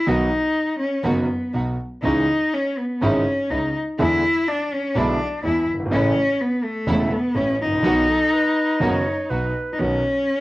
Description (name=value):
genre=tango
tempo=124 BPM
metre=4/4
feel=rubato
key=unclear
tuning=A4 = 440 Hz
part: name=clear cello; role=second line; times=0.0-10.4 s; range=A3 to E4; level=-21 LUFS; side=left 1 dB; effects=none
part: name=clear concert grand piano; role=accompaniment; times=0.1-10.0 s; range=E1 to F#4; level=-23 LUFS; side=right 1 dB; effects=none
part: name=rich symphonic string section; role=stabs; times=0.1-9.5 s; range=G#3 to F#4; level=-28 LUFS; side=right 2 dB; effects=none
part: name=warm double bass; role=bass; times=0.1-10.0 s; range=E1 to E2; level=-28 LUFS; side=equal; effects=none
part: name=bright reedy silver concert flute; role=second line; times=8.1-9.8 s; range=A4 to C#5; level=-27 LUFS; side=right 2 dB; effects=none
room=moderate studio reverb, RT60 0.5 s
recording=home recording on cassette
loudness=-18 LUFS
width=side -18 dB against mid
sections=0.0-9.8 A section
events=cello solo 0.0-9.8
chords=0.1 B; 2.0 C#madd9; 4.0 E7; 5.9 A; 7.8 B